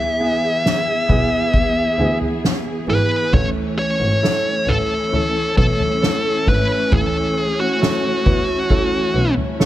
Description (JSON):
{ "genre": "pop ballad", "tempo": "67 BPM", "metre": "4/4", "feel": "straight", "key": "A major", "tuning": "A4 = 437 Hz", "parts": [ { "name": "high-gain lead guitar", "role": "melody", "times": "0.0-9.3 s", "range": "F#4 to E5", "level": "-19 LUFS", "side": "equal", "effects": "distortion" }, { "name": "clear concert grand piano", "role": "accompaniment", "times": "0.0-9.7 s", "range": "E3 to C#5", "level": "-25 LUFS", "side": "right 3 dB", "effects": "none" }, { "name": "warm symphonic string section", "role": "sustained chords", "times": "0.0-9.7 s", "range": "E3 to G#4", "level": "-24 LUFS", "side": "left 1 dB", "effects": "none" }, { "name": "soft-mallet drum kit", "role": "drums", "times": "0.7-9.7 s", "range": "kick drum, snare drum, toms", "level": "-20 LUFS", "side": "equal", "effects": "none" }, { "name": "warm double bass", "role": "bass", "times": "1.1-9.2 s", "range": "G#1 to E2", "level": "-22 LUFS", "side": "equal", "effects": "none" } ], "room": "studio ambience", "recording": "none", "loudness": "-15 LUFS", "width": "side -13 dB against mid", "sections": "0.0-9.7 A section", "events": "none", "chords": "0.0 E; 3.3 A", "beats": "0.65 1.54 2.44 | 3.33 4.23 5.13 6.02 | 6.92 7.81 8.70 9.59" }